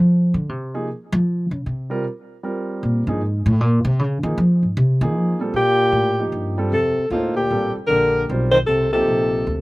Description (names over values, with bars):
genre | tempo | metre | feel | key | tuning
modal jazz | 154 BPM | 3/4 | swing 64% on 8ths | Bb major | A4 = 440 Hz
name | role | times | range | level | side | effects
upright bass | bass | 0.0-9.6 s | A1 to F3 | -19 LUFS | equal | none
dark grand piano | accompaniment | 0.7-9.4 s | Bb2 to C5 | -26 LUFS | right 1 dB | none
mellow trombone | second line | 5.5-9.6 s | A2 to Eb3 | -25 LUFS | left 3 dB | slapback echo
mellow alto saxophone | melody | 5.6-9.6 s | F4 to C5 | -18 LUFS | equal | slapback echo
room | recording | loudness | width
little or no reverb | recorded outdoors, with no room sound | -17 LUFS | side -21 dB against mid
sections
0.0-5.6 A section; 5.6-9.6 B section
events
upright bass solo 0.0-5.6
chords
0.0 Bbadd9; 0.9 Dbmaj9 (rootless); 5.6 Bbmaj9